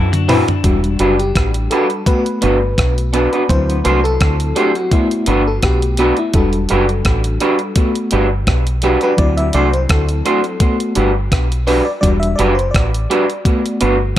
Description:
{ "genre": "lovers rock reggae", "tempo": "84 BPM", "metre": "4/4", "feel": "swing 54% on 16ths", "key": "G major", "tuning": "A4 = 440 Hz", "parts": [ { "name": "electric guitar through a small old amp", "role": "arpeggios", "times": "0.0-0.6 s", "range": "D4 to E4", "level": "-26 LUFS", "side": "left 7 dB", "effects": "spring reverb, tape echo" }, { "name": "deep dub fingered electric bass", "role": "bass", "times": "0.0-14.1 s", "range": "E1 to F#2", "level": "-17 LUFS", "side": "equal", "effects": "none" }, { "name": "clean 12-bit digital drum machine", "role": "drums", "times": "0.1-14.2 s", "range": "hi-hat, kick drum, rim click, toms", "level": "-17 LUFS", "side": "equal", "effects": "tape echo" }, { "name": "FM electric piano with tremolo", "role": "accompaniment", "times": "0.3-14.2 s", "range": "F#3 to E5", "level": "-19 LUFS", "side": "left 2 dB", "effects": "none" }, { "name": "electric guitar through a small old amp", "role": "stabs", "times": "0.3-14.0 s", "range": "G3 to C5", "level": "-17 LUFS", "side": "right 2 dB", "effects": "tape echo" } ], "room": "digital ambience", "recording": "none", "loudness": "-13 LUFS", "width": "side -12 dB against mid", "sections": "0.6-14.2 A section", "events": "drum fill 0.0-0.6; FM electric piano solo 0.6-14.2", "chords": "0.0 D13; 0.6 Em9; 2.1 Gmaj7; 3.5 D7; 4.9 Gmaj7; 6.3 Em9; 7.8 Gmaj7; 9.2 D7; 10.6 Gmaj7; 12.0 Em9; 13.5 Gmaj7" }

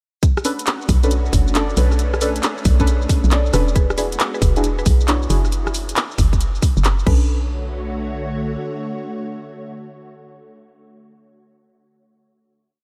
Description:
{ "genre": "UK garage, two-step garage", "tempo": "136 BPM", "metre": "4/4", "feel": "swing 66% on 16ths", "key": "B dorian", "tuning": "A4 = 440 Hz", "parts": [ { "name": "soft string machine", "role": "sustained chords", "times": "0.5-10.9 s", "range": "D3 to C#5", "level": "-32 LUFS", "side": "equal", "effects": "phaser, ensemble chorus, sidechain pumping" }, { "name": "electronic kick drum", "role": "drums", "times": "0.2-7.2 s", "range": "none", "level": "-19 LUFS", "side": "equal", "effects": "small room reverb" }, { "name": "garage drum kit", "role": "drums", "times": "0.2-7.2 s", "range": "crash cymbal, handclaps, hi-hat, rim click, shaker", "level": "-26 LUFS", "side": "equal", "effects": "small room reverb" }, { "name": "deep mellow chord stab", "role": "stabs", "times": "0.4-10.9 s", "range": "C#4 to D5", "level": "-27 LUFS", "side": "equal", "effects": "chorus, phaser, analog delay" }, { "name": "hollow knocking FM bass", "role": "bass", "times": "0.9-8.6 s", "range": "E1 to B1", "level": "-20 LUFS", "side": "equal", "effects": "tube saturation, sidechain pumping" }, { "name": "mallet-like synth pluck", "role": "melody", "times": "3.8-10.9 s", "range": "G#4 to B4", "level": "-34 LUFS", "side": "equal", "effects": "chorus, analog delay" } ], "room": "light reverb", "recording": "none", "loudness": "-19 LUFS", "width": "mono", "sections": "0.2-7.3 drop; 7.3-10.8 final hit", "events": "drop 0.2-7.3", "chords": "0.2 Bm9; 3.8 E9; 5.5 N.C.; 7.1 Bm9" }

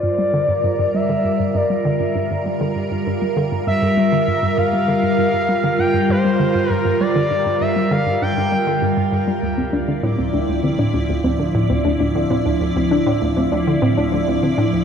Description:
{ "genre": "ambient, sequencer-driven space music", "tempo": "99 BPM", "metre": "4/4", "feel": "straight", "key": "unclear", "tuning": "A4 = 440 Hz", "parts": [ { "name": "expressive portamento lead", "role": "melody", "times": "0.0-9.1 s", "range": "C5 to G5", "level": "-21 LUFS", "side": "left 1 dB", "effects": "chorus, tape echo" }, { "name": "evolving wavetable pad", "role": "sustained chords", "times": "0.0-14.8 s", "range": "F3 to D5", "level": "-20 LUFS", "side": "equal", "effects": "ensemble chorus, built-in reverb, phaser" }, { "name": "hollow square pluck", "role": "riff", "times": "0.0-14.8 s", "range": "D2 to G3", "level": "-22 LUFS", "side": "equal", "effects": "chorus, tape echo" }, { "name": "soft round pluck", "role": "arpeggios", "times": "9.6-14.7 s", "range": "C4 to D4", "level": "-21 LUFS", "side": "left 2 dB", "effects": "chorus, auto-pan, tape echo" } ], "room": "wet cathedral reverb, RT60 5.6 s", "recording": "in a vast, echoing space", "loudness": "-16 LUFS", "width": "side -7 dB against mid", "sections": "0.0-14.8 A section", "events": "none", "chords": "0.0 Gm7; 9.4 Dmadd9" }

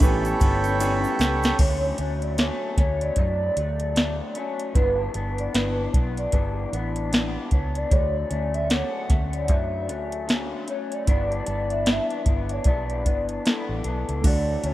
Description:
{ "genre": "indie pop, bedroom pop", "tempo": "76 BPM", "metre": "4/4", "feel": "swing 60% on 16ths", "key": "D major", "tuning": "A4 = 440 Hz", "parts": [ { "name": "hollow clarinet-like synth lead", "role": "melody", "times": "0.0-14.7 s", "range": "C#4 to F#5", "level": "-31 LUFS", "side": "left 1 dB", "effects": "lush chorus, analog delay" }, { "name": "electric guitar through a small old amp", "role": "accompaniment", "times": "0.0-14.7 s", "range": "G2 to D4", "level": "-30 LUFS", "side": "left 4 dB", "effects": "analog chorus, vibrato effect" }, { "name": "soft electric-piano-like synth keys", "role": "accompaniment", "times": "0.0-1.6, 14.2-14.7 s", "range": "A3 to B4", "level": "-30 LUFS", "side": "right 6 dB", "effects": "chorus" }, { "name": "hand-pumped harmonium", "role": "sustained chords", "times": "0.0-1.6 s", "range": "A4 to B5", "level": "-26 LUFS", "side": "right 2 dB", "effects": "none" }, { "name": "vintage muted fingered electric bass", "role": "bass", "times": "0.0-14.7 s", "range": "G1 to F#2", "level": "-28 LUFS", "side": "equal", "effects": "none" }, { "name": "soft vintage rhythm box", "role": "drums", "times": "0.0-14.7 s", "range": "crash cymbal, hi-hat, kick drum, ride cymbal, snare drum", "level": "-22 LUFS", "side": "equal", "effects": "none" }, { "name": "tube shaker", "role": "percussion", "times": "0.0-1.6 s", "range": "none", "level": "-42 LUFS", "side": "right 4 dB", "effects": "none" }, { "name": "vibraphone with soft mallets", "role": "second line", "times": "1.6-13.0 s", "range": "B4 to E5", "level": "-30 LUFS", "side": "right 2 dB", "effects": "ensemble chorus, analog delay" } ], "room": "light reverb, digital ambience", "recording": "rough home demo mix", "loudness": "-21 LUFS", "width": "side -15 dB against mid", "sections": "0.0-1.6 A section; 1.6-14.2 B section", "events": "drum fill 0.8-1.6", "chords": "0.0 A9; 1.6 Dmaj7; 4.8 G6; 7.9 Dmaj7; 11.1 G6" }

